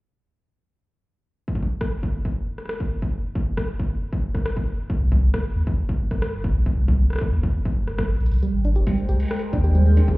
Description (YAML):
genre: IDM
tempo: 136 BPM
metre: 4/4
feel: straight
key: unclear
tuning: A4 = 440 Hz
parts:
  - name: electronic kick drum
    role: drums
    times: 1.5-10.2 s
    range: none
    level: -24 LUFS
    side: equal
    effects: distortion
  - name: industrial drum kit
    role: drums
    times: 1.8-10.2 s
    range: hi-hat, rim click, struck metal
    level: -32 LUFS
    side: left 1 dB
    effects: digital delay
  - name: warm sub bass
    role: bass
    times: 5.0-10.1 s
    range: Eb1 to Eb2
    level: -19 LUFS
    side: equal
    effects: tube saturation
  - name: phased analog pad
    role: sustained chords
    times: 8.4-10.2 s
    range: Ab3 to G5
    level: -28 LUFS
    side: right 2 dB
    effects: phaser, chorus
  - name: soft round pluck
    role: arpeggios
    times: 8.4-10.2 s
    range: G3 to G4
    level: -27 LUFS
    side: right 2 dB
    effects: chorus, ping-pong delay
room: little or no reverb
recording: heard muffled through a wall, club reverb, EQ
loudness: -20 LUFS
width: side -21 dB against mid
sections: 1.4-8.4 A section; 8.4-10.2 B section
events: drum fill 8.2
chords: 1.4 N.C.; 4.9 C5; 8.4 Abmaj7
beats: | 1.37 1.81 2.25 2.69 | 3.13 3.57 4.01 4.46 | 4.90 5.34 5.78 6.22 | 6.66 7.10 7.54 7.99 | 8.43 8.87 9.31 9.75